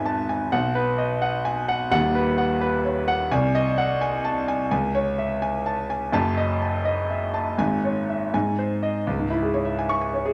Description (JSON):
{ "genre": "classical, virtuoso piano study", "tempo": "85 BPM (dotted quarters)", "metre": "6/8", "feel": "rubato", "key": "C# minor from 3.3 s", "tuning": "A4 = 439 Hz", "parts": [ { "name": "warm concert grand piano", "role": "solo", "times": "0.0-10.3 s", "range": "D#1 to C#6", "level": "-24 LUFS", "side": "equal", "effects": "none" } ], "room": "wet large studio reverb, RT60 1.1 s", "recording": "none", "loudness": "-24 LUFS", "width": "mono", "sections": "0.0-9.1 A section; 9.1-10.3 B section", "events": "none", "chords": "0.0 E/G#; 0.5 B; 1.9 B/D#; 3.3 G#7/B#; 4.7 C#m; 6.1 D#dim/F#; 7.6 C#m/G#; 8.3 G#; 9.1 C#m", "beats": "| 0.52 1.22 | 1.92 2.61 | 3.31 4.01 | 4.72 5.43 | 6.14 6.86 | 7.59 8.33 | 9.07 9.78" }